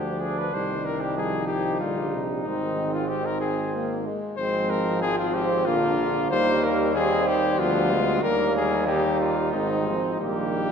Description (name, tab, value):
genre	classical, brass quintet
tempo	93 BPM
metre	3/4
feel	rubato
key	Eb major from 4.4 s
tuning	A4 = 439 Hz
part	mellow cornet	melody	0.0-10.7 s	Eb4 to C5	-27 LUFS	left 5 dB	none
part	warm flugelhorn	second line	0.0-10.7 s	Bb3 to Eb4	-30 LUFS	right 5 dB	none
part	clear French horn	accompaniment	0.0-10.7 s	D3 to Bb3	-30 LUFS	left 2 dB	none
part	warm trombone	accompaniment	0.0-10.7 s	C3 to Ab3	-31 LUFS	right 3 dB	none
part	clear bass trombone	bass	0.0-10.7 s	Ab1 to Eb2	-28 LUFS	right 1 dB	none
room	wet church reverb, RT60 2.9 s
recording	dark, warm production, nothing above 10.8 kHz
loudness	-22 LUFS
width	side -6 dB against mid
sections	0.0-10.7 A section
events	none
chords	0.0 G7/D; 0.5 Cm; 2.5 Ab; 4.4 Fm/Ab; 5.7 Bb; 6.3 Eb; 7.6 Ddim7; 8.2 Eb; 9.5 Ab; 10.2 Eb/Bb